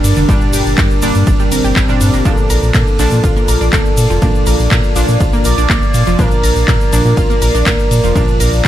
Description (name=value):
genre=melodic techno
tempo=122 BPM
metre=4/4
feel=straight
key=unclear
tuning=A4 = 440 Hz
part: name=expressive synth lead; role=melody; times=0.0-8.6 s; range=C4 to D5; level=-20 LUFS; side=equal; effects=chorus, sidechain pumping, tape echo
part: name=evolving wavetable pad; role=sustained chords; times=0.0-8.7 s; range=G3 to D5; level=-21 LUFS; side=left 1 dB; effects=chorus, built-in reverb, phaser, sidechain pumping
part: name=synth brass stab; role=stabs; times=0.0-8.7 s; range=Bb2 to D4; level=-20 LUFS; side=right 1 dB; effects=chorus, sidechain pumping, tape echo
part: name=round analog bass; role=bass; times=0.0-8.7 s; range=F1 to Bb2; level=-14 LUFS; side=equal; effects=sidechain pumping
part: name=house drum kit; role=drums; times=0.0-8.7 s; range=handclaps, hi-hat, ride cymbal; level=-20 LUFS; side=left 1 dB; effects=sidechain pumping on cymbals, sidechain pumping on hats
part: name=egg shaker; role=percussion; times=0.0-8.7 s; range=none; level=-27 LUFS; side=left 1 dB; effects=none
part: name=wide unison pluck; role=arpeggios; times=0.2-8.7 s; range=D3 to Bb5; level=-22 LUFS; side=right 1 dB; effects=sidechain pumping, tape echo
part: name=electronic kick drum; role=drums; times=0.3-8.7 s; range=none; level=-15 LUFS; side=equal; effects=none
room=little or no reverb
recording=none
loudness=-10 LUFS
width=side -12 dB against mid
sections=0.0-8.7 A section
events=none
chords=0.0 Gm; 2.3 Bb